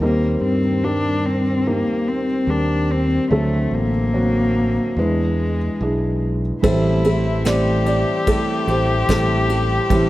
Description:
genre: folk.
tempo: 73 BPM.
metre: 4/4.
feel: straight.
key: A minor from 6.6 s.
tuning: A4 = 440 Hz.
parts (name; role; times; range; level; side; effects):
felt-muted upright piano; melody; 0.0-10.1 s; A1 to E5; -21 LUFS; equal; none.
warm cello; second line; 0.0-10.1 s; G#3 to G4; -22 LUFS; left 2 dB; none.
fingered electric bass; bass; 0.0-10.1 s; A1 to G2; -22 LUFS; equal; none.
warm chamber string section; sustained chords; 6.6-10.1 s; G4 to C6; -33 LUFS; left 1 dB; none.
felt-muted upright piano; arpeggios; 6.6-10.1 s; E3 to G4; -24 LUFS; right 4 dB; none.
soft brush drum kit; drums; 6.6-10.1 s; kick drum, ride cymbal, snare drum; -25 LUFS; equal; none.
room: light reverb.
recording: faint mains hum.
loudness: -16 LUFS.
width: side -16 dB against mid.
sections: 0.0-6.6 A section; 6.6-10.1 B section.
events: cello solo 0.0-6.6.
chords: 0.0 Cm7/Eb; 3.3 D7; 5.0 E7; 6.6 Am7.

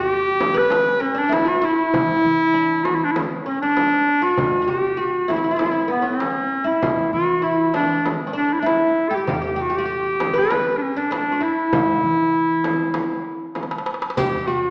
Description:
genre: Turkish makam ensemble.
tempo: 98 BPM.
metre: 4/4.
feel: straight.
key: E makam huseyni.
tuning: A4 = 437 Hz.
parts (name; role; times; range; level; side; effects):
bright clarinet; melody; 0.0-14.7 s; B3 to B4; -21 LUFS; equal; slapback echo.
oud; second line; 0.0-14.7 s; B3 to B4; -28 LUFS; equal; none.
upright bass; bass; 0.0-14.7 s; E2 to E3; -36 LUFS; equal; none.
darbuka; percussion; 0.4-14.3 s; none; -33 LUFS; equal; none.
frame drum; percussion; 0.4-14.3 s; none; -31 LUFS; equal; none.
riq; percussion; 14.2-14.6 s; none; -36 LUFS; equal; none.
room: wet scoring stage reverb, RT60 1.6 s.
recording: heard from further back in the room, small speaker sound.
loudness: -20 LUFS.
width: mono.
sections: 0.0-14.2 A section.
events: drum fill 13.6-14.2.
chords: none.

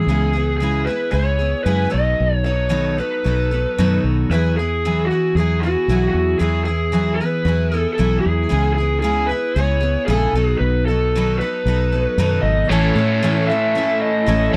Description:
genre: folk rock and heartland rock.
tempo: 114 BPM.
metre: 4/4.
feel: straight.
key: E major.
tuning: A4 = 440 Hz.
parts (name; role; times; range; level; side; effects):
lead guitar through a small cranked amp; melody; 0.0-14.6 s; F#4 to E5; -23 LUFS; equal; overdrive.
picked twelve-string acoustic guitar; accompaniment; 0.0-14.6 s; A2 to A4; -24 LUFS; equal; none.
fingered electric bass; bass; 0.1-14.6 s; G#1 to A2; -22 LUFS; equal; none.
mellow tonewheel organ; sustained chords; 12.7-14.6 s; E4 to C#5; -34 LUFS; equal; slow rotary speaker, chorus vibrato.
overdriven electric guitar; riff; 12.7-14.6 s; A2 to A4; -25 LUFS; equal; none.
room: light reverb.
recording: dry, close 1970s-style studio recording.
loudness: -18 LUFS.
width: mono.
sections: 0.0-12.7 A section; 12.7-14.6 B section.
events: none.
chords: 0.1 C#m7; 1.9 B7; 4.3 Eadd9; 8.5 C#m7; 10.3 B7; 12.7 A.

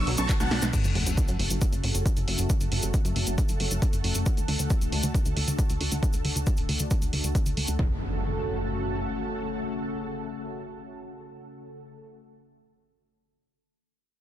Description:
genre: uplifting trance.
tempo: 136 BPM.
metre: 4/4.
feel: straight.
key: F# minor.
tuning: A4 = 440 Hz.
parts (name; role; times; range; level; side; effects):
big supersaw lead; melody; 0.0-0.6 s; F#5 to C#6; -34 LUFS; equal; sidechain pumping, ping-pong delay.
plucky unison lead; second line; 0.0-0.6 s; A5 to C#6; -42 LUFS; equal; none.
analog string pad; sustained chords; 0.0-11.9 s; C#3 to B4; -34 LUFS; equal; ensemble chorus, sidechain pumping.
wide unison pluck; arpeggios; 0.0-0.7 s; F#3 to F#4; -37 LUFS; equal; cassette tape, sidechain pumping, ping-pong delay.
plucky analog bass; bass; 0.0-9.1 s; D1 to F#2; -29 LUFS; equal; tube saturation, sidechain pumping.
punchy analog drum machine; drums; 0.1-7.8 s; congas, crash cymbal, handclaps, hi-hat, ride cymbal, snare drum; -32 LUFS; right 1 dB; none.
cabasa; percussion; 0.2-7.8 s; none; -36 LUFS; left 3 dB; none.
electronic kick drum; drums; 0.3-7.9 s; none; -25 LUFS; equal; none.
sub drop and impact; sound effects; 0.7-2.5, 7.8-12.0 s; none; -34 LUFS; equal; none.
room: digital ambience.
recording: dense, heavily limited modern master.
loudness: -24 LUFS.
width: side -12 dB against mid.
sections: 0.7-7.8 A section; 7.8-11.3 B section.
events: drum fill 0.4-0.7; impact 0.7-2.5; filter sweep on analog synth bass 0.7-7.8.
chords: 0.0 Bm7; 0.7 F#m; 4.3 D; 7.8 F#m.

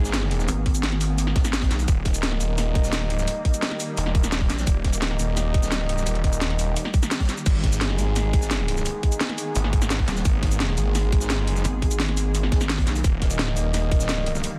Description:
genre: dark technical drum and bass.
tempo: 172 BPM.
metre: 4/4.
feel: straight.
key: G# harmonic minor.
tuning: A4 = 437 Hz.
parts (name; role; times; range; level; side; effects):
swarming drone; sustained chords; 0.0-14.6 s; D#3 to G#4; -36 LUFS; equal; built-in reverb, sidechain pumping.
mellow brass ensemble; stabs; 0.0-14.6 s; G#3 to D#5; -34 LUFS; equal; digital delay.
snarling distorted saw bass; bass; 0.0-14.4 s; D#1 to G#1; -27 LUFS; equal; distortion, overdrive.
crunchy breakbeat drum kit; drums; 0.0-14.5 s; hi-hat, snare drum; -41 LUFS; equal; none.
drum and bass drum kit; drums; 0.0-14.5 s; crash cymbal, hi-hat, shaker, snare drum; -30 LUFS; equal; none.
pulsing pluck wobble bass; bass; 0.5-1.9, 4.5-4.7, 10.1-13.0 s; D#1 to B1; -26 LUFS; equal; chorus.
electronic kick drum; drums; 0.7-14.0 s; none; -23 LUFS; equal; none.
room: studio reverb.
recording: dense, heavily limited modern master.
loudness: -23 LUFS.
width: mono.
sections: 0.0-14.6 A section.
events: none.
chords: 0.0 G#madd9; 1.9 D#; 7.5 G#madd9; 13.0 D#.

